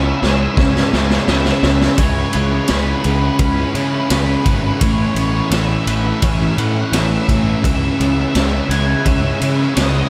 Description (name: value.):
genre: rock, shoegaze and dream pop.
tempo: 85 BPM.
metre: 4/4.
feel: straight.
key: C# minor.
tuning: A4 = 439 Hz.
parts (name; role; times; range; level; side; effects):
octave-fuzz lead guitar; melody; 0.0-10.1 s; B4 to G#5; -28 LUFS; equal; distortion, delay.
twangy electric guitar; arpeggios; 0.0-10.1 s; E3 to G#4; -31 LUFS; equal; ensemble chorus, delay.
crunchy overdriven guitar; riff; 0.0-10.1 s; A2 to E4; -24 LUFS; equal; reverse reverb.
fuzz guitar; riff; 0.0-10.1 s; A2 to C#4; -24 LUFS; equal; distortion, analog chorus.
fuzz picked electric bass; bass; 0.0-10.0 s; G#1 to C#3; -21 LUFS; equal; overdrive.
raw garage drum kit; drums; 0.2-9.9 s; kick drum, ride cymbal, snare drum; -21 LUFS; equal; none.
room: moderate huge ambient reverb, RT60 7.3 s.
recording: dreamy mix soaked in reverb.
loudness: -16 LUFS.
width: mono.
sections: 0.0-2.0 A section; 2.0-10.1 B section.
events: drum fill 0.0-2.0.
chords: 0.0 C#m7; 4.8 Aadd9; 7.6 C#m7.